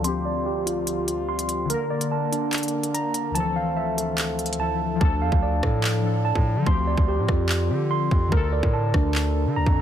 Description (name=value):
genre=hip hop, drill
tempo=145 BPM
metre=4/4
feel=half-time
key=D minor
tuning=A4 = 440 Hz
part: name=warbly lo-fi synth keys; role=accompaniment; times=0.0-9.8 s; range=D2 to Bb4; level=-28 LUFS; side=left 6 dB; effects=chorus, low-pass filter
part: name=warm brass ensemble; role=sustained chords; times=0.0-5.0 s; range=D2 to F4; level=-34 LUFS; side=left 5 dB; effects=low-pass filter
part: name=mellow tine electric piano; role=arpeggios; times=0.0-9.8 s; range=D4 to C6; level=-26 LUFS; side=right 4 dB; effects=wide subtle chorus, low-pass filter, ping-pong delay
part: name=drill drum kit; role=drums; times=0.0-9.8 s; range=handclaps, hi-hat, kick drum, rim click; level=-24 LUFS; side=equal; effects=none
part: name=distorted 808-style bass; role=bass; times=5.0-9.8 s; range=D2 to D3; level=-24 LUFS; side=equal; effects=distortion
room=little or no reverb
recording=dense, heavily limited modern master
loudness=-21 LUFS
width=side -10 dB against mid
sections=0.0-5.0 A section; 5.0-9.8 B section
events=filter sweep 0.0-5.0; silent gap 4.6-5.0; hi-hats muted 5.0-9.8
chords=0.0 Csus4/D; 1.7 Bbmaj7/D; 3.4 Fmaj7/D; 5.0 Dm; 6.7 Csus4/D; 8.3 Bbmaj7/D